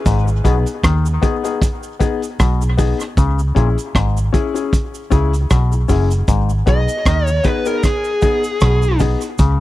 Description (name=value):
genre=dub reggae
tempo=77 BPM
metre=4/4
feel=swing 56% on 16ths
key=G# minor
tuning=A4 = 439 Hz
part: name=mellow clav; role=riff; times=0.1-9.6 s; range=F#2 to D#3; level=-25 LUFS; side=left 6 dB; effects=dub echo
part: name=vintage muted fingered electric bass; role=bass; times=0.1-9.6 s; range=F#1 to D#2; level=-16 LUFS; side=equal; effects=none
part: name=crunchy breakbeat drum kit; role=drums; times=0.1-9.6 s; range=hi-hat, kick drum, rim click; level=-17 LUFS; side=equal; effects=none
part: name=cabasa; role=percussion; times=0.1-9.6 s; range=none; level=-36 LUFS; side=right 8 dB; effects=dub echo
part: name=warm baby grand piano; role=stabs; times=0.4-9.2 s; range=B3 to G#4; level=-23 LUFS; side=left 7 dB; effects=dub echo
part: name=fuzz lead guitar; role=melody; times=6.7-9.0 s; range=G#4 to D#5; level=-20 LUFS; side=right 1 dB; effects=distortion, dub echo
room=little or no reverb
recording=dry, close 1970s-style studio recording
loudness=-14 LUFS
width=side -16 dB against mid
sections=0.0-9.6 A section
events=break 0.1-6.3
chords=0.1 G#m; 3.2 C#m; 6.3 G#m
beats=| 0.06 0.84 1.62 2.39 | 3.17 3.95 4.73 5.50 | 6.28 7.06 7.84 8.62 | 9.39